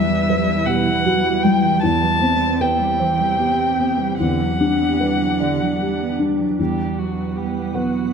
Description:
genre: neoclassical piano and strings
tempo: 50-53 BPM (dotted quarters)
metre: 6/8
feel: rubato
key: E minor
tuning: A4 = 440 Hz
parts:
  - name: muted violin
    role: melody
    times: 0.0-8.1 s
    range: F#4 to A5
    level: -21 LUFS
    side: left 2 dB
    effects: none
  - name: muted cello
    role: second line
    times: 0.0-8.1 s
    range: B2 to C4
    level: -23 LUFS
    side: right 8 dB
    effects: none
  - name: felt-muted upright piano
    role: accompaniment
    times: 0.0-8.1 s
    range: E2 to F#5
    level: -21 LUFS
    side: left 2 dB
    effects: none
  - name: soft additive organ-like pad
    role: sustained chords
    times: 0.0-8.1 s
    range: G3 to F#5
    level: -26 LUFS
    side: right 4 dB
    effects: ensemble chorus, built-in reverb
room: moderate scoring stage reverb, RT60 1.9 s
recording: dark, warm production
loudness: -16 LUFS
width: side -6 dB against mid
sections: 0.0-6.6 A section; 6.6-8.1 B section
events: none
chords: 0.0 Emadd9; 1.8 Cmaj7/E; 4.2 Gmaj7/E; 6.6 Emadd9

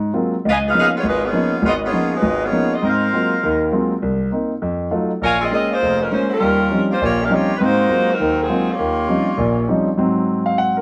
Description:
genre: jazz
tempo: 202 BPM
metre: 4/4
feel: swing 62% on 8ths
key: Ab mixolydian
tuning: A4 = 441 Hz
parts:
  - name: warm grand piano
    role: accompaniment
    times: 0.0-10.8 s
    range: F1 to Gb5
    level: -20 LUFS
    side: equal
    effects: none
  - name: warm saxophone section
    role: melody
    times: 0.5-9.7 s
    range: Gb3 to Ab5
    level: -21 LUFS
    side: equal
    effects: none
room: moderate echo chamber reverb, RT60 1.6 s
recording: dark, warm production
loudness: -18 LUFS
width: mono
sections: 0.0-10.0 A section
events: none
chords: 0.4 Db13; 2.8 Ab13; 4.0 Cm7; 4.6 F7b9; 5.2 Bbm7; 6.4 Eb13; 7.6 Ab13; 8.8 Eb13; 10.0 Ab7

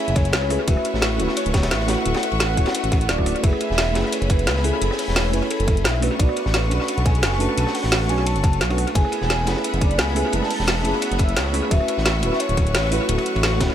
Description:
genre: liquid drum and bass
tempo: 174 BPM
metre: 4/4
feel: swing 54% on 16ths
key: F# minor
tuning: A4 = 440 Hz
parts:
  - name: warm velvety synth lead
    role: melody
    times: 0.0-13.7 s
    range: F#4 to A5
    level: -27 LUFS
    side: equal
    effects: chorus, tremolo, dub echo
  - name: deep mellow chord stab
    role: accompaniment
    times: 0.0-13.7 s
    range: G#3 to G#5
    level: -26 LUFS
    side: right 1 dB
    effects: chorus, vintage 12-bit sampler grit, dub echo
  - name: clear symphonic string section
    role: sustained chords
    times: 0.0-13.7 s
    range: A3 to C#6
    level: -29 LUFS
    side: left 3 dB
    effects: sidechain pumping
  - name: smooth synth bass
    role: bass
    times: 0.1-13.7 s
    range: D1 to C#2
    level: -23 LUFS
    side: equal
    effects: none
  - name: drum and bass drum kit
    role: drums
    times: 0.1-13.7 s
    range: hi-hat, rim click, snare drum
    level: -25 LUFS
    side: equal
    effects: analog delay
  - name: crunchy breakbeat drum kit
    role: drums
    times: 0.2-13.7 s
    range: hi-hat, ride cymbal, snare drum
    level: -30 LUFS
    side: equal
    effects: high-pass filter on cymbals, high-pass filter on hats, high-pass filter on snare, high-pass filter on room, analog delay
  - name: electronic kick drum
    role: drums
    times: 0.2-13.7 s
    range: none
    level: -19 LUFS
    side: equal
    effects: none
room: small room ambience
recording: echo-heavy mix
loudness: -18 LUFS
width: side -10 dB against mid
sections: 0.0-13.7 A section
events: none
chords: 0.0 F#m11; 0.7 Dmaj13; 3.4 F#m11; 6.0 Bm9; 9.0 F#m11; 11.7 Dmaj13

